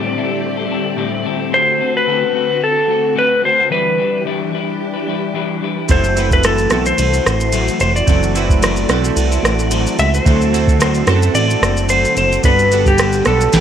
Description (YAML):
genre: indie pop, bedroom pop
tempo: 110 BPM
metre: 4/4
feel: swing 55% on 16ths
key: unclear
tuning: A4 = 441 Hz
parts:
  - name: clean lap steel guitar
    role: melody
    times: 0.0-13.6 s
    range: G4 to E5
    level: -16 LUFS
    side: left 1 dB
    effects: lush chorus, slapback echo
  - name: semi-hollow electric guitar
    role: accompaniment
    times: 0.0-13.6 s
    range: A2 to C5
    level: -22 LUFS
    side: left 10 dB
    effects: wide subtle chorus, warbly pitch drift
  - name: soft string machine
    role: sustained chords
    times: 0.0-13.6 s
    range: A2 to B4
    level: -24 LUFS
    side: right 1 dB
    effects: ensemble chorus
  - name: chorused retro synth keys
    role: accompaniment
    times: 5.9-13.6 s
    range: B3 to F#5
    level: -22 LUFS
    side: right 15 dB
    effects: none
  - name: chorused synth bass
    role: bass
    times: 5.9-13.6 s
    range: F1 to F#2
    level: -17 LUFS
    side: right 1 dB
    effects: none
  - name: soft vintage rhythm box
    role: drums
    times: 5.9-13.6 s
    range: kick drum, ride cymbal, rim click, shaker, snare drum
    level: -18 LUFS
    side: right 1 dB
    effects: none
room: moderate spring reverb, RT60 2.2 s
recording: 1960s-style stereo with parts hard left and right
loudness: -13 LUFS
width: side -9 dB against mid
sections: 0.0-13.6 A section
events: none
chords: 0.0 Am7; 1.5 D7; 3.7 Em7; 5.9 F#m7b5; 10.3 D7; 12.4 Gmaj7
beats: 0.43 0.98 | 1.53 2.07 2.62 3.16 | 3.71 4.25 4.80 5.35 | 5.89 6.44 6.98 7.53 | 8.07 8.62 9.17 9.71 | 10.26 10.80 11.35 11.89 | 12.44 12.98 13.53